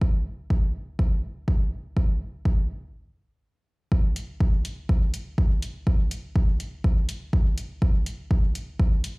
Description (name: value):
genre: techno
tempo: 123 BPM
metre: 4/4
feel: swing 53% on 16ths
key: none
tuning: none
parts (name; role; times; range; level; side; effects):
- electronic kick drum; drums; 0.0-8.9 s; none; -22 LUFS; equal; none
- electronic hi-hat; drums; 4.2-9.1 s; none; -38 LUFS; left 1 dB; none
room: little or no reverb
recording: played on a big sound system in a bare room, large studio reverb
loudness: -23 LUFS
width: side -29 dB against mid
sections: 0.0-3.9 A section; 3.9-9.2 B section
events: stop 2.9-3.9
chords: none